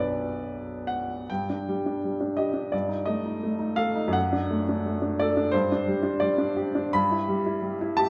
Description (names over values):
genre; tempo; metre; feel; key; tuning
classical, romantic character piece for solo piano; 85 BPM; 2/4; uneven beats, rubato; unclear; A4 = 440 Hz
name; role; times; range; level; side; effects
clear upright piano; solo; 0.0-8.1 s; B1 to B5; -27 LUFS; equal; none
room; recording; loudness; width
wet concert hall reverb, RT60 2.1 s; none; -27 LUFS; mono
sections
0.0-1.3 A section; 1.3-8.1 B section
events
none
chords
0.0 Bm; 1.3 G5; 2.7 F13/G; 4.1 D/F#; 5.5 G5; 6.9 Em/G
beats
0.43 | 1.29 2.03 | 2.73 3.44 | 4.15 4.85 | 5.53 6.20 | 6.93 7.63